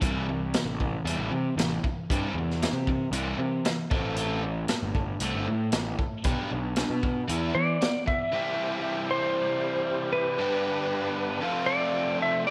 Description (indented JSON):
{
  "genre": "classic rock",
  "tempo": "115 BPM",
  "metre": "4/4",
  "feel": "straight",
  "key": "unclear",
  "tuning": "A4 = 442 Hz",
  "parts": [
    { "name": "biting overdriven guitar", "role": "riff", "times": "0.0-12.5 s", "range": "F2 to G4", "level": "-33 LUFS", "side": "equal", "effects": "none" },
    { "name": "fuzz picked electric bass", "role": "bass", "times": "0.0-7.8 s", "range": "G1 to E3", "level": "-32 LUFS", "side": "equal", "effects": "overdrive" },
    { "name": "vintage drum kit", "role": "drums", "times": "0.0-8.2 s", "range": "hi-hat, kick drum, snare drum", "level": "-32 LUFS", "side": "equal", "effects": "none" },
    { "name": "clean lap steel guitar", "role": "melody", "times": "7.5-12.5 s", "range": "B4 to E5", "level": "-30 LUFS", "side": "equal", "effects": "none" },
    { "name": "tonewheel organ", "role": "sustained chords", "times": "8.3-12.5 s", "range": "D4 to C5", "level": "-38 LUFS", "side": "equal", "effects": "slow rotary speaker, overdrive, chorus vibrato" }
  ],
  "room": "moderate plate reverb, RT60 1.7 s, small room ambience",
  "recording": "none",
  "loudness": "-28 LUFS",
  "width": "mono",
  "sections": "0.0-8.3 A section; 8.3-12.5 B section",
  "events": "none",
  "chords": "0.0 C; 3.9 Am; 6.3 G/B; 7.3 E5; 8.3 C; 10.4 G; 11.4 F"
}